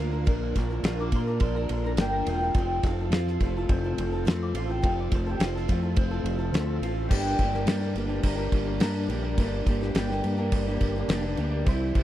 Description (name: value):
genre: folk rock and heartland rock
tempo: 105 BPM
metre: 4/4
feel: straight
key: G minor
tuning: A4 = 440 Hz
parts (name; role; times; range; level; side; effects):
- mandolin; melody; 0.0-12.0 s; F4 to D6; -34 LUFS; left 1 dB; slapback echo
- picked old ladder-braced acoustic guitar; accompaniment; 0.0-12.0 s; G2 to Bb4; -33 LUFS; left 3 dB; none
- tonewheel organ; sustained chords; 0.0-12.0 s; Bb3 to C5; -40 LUFS; equal; slow rotary speaker, overdrive, chorus vibrato
- electric guitar through a small old amp; riff; 0.0-12.0 s; F2 to G4; -33 LUFS; right 2 dB; spring reverb
- fingered electric bass; bass; 0.0-12.0 s; E1 to Bb2; -29 LUFS; equal; none
- damped 70s drum kit; drums; 0.3-12.0 s; crash cymbal, kick drum, ride cymbal, snare drum; -28 LUFS; equal; none
room: little or no reverb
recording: dry, close 1970s-style studio recording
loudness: -24 LUFS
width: side -13 dB against mid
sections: 0.0-7.1 A section; 7.1-12.0 B section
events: mandolin solo 0.0-7.1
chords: 0.0 Bb; 2.6 F; 7.1 Gm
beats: | 0.28 0.85 1.42 1.99 | 2.56 3.12 3.69 4.26 | 4.83 5.40 5.97 6.54 | 7.11 7.68 8.25 8.82 | 9.38 9.95 10.52 11.09 | 11.66